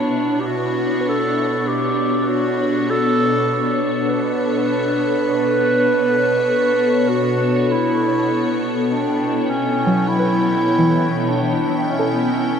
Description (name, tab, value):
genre	ambient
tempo	50 BPM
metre	4/4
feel	straight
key	B minor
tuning	A4 = 439 Hz
part	warm clarinet	melody	0.0-12.6 s	C#4 to B4	-19 LUFS	right 1 dB	ping-pong delay
part	evolving wavetable pad	sustained chords	0.0-12.6 s	B2 to G5	-19 LUFS	left 1 dB	ensemble chorus, built-in reverb, phaser
part	soft round pluck	arpeggios	0.0-12.6 s	E3 to B4	-22 LUFS	equal	chorus, ping-pong delay
room	wet cathedral reverb, RT60 6.7 s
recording	in a vast, echoing space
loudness	-16 LUFS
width	side -7 dB against mid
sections	0.0-12.6 A section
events	none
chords	0.0 Bm7; 7.7 A7/B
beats	0.49 1.69 | 2.89 4.09 5.29 6.49 | 7.69 8.89 10.09 11.29 | 12.49